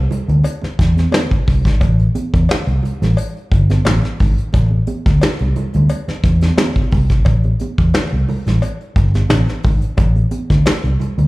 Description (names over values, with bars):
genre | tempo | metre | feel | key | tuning
funk | 88 BPM | 4/4 | straight | unclear | A4 = 442 Hz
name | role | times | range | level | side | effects
vintage muted fingered electric bass | bass | 0.0-11.3 s | G1 to E2 | -14 LUFS | equal | none
soft brush drum kit | drums | 0.1-11.3 s | hi-hat, kick drum, snare drum | -17 LUFS | equal | none
congas | percussion | 0.1-11.3 s | none | -26 LUFS | right 3 dB | none
cowbell | percussion | 0.4-10.8 s | none | -30 LUFS | left 4 dB | slapback echo
room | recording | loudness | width
small room reverb | live gig heard through the venue's PA, club reverb | -13 LUFS | side -20 dB against mid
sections
0.0-11.3 A section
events
none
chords
none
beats
0.45 1.13 | 1.81 2.50 3.18 3.86 | 4.54 5.22 5.90 6.58 | 7.26 7.94 8.62 9.30 | 9.98 10.66